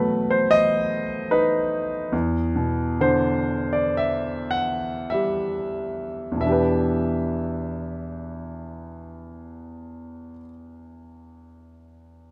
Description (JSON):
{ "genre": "classical, lyrical solo piano", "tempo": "44-78 BPM", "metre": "4/4", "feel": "rubato", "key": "E minor", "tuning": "A4 = 440 Hz", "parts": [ { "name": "bright concert grand piano", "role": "solo", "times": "0.0-12.3 s", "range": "E2 to F#5", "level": "-24 LUFS", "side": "equal", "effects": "none" } ], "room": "light reverb", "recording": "none", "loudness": "-24 LUFS", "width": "mono", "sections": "0.0-6.4 A section; 6.4-11.7 B section", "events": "slowing down 0.0-6.4", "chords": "0.0 B7; 2.1 Em7", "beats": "0.52 1.32 | 2.13 3.02 3.99 5.13 | 6.43 7.76 9.03 10.34" }